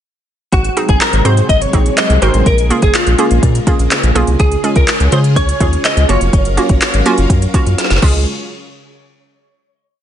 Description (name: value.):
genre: dance-pop.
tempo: 124 BPM.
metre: 4/4.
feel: straight.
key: unclear.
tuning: A4 = 443 Hz.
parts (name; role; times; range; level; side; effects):
direct-recorded clean electric guitar; melody; 0.5-7.7 s; F4 to Eb5; -18 LUFS; left 1 dB; ensemble chorus, ping-pong delay.
string machine, violins; sustained chords; 0.5-8.3 s; C3 to F5; -22 LUFS; left 1 dB; ensemble chorus, sidechain pumping.
round analog bass; bass; 0.5-8.2 s; F1 to Db3; -13 LUFS; equal; sidechain pumping.
smooth R&B drum kit; drums; 0.5-8.1 s; crash cymbal, handclaps, hi-hat, kick drum, snare drum; -14 LUFS; equal; none.
hollow square pluck; accompaniment; 0.8-8.2 s; Ab3 to Bb4; -18 LUFS; right 4 dB; chorus, sidechain pumping.
room: little or no reverb.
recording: nothing above 10.8 kHz.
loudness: -10 LUFS.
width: side -10 dB against mid.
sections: 0.5-8.3 pre-chorus; 8.3-10.0 final hit.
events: drum fill 7.8-8.3.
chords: 0.5 Ab7; 2.5 Bbm7; 4.4 Db; 6.1 Gbmaj7; 8.0 Db; 8.3 N.C..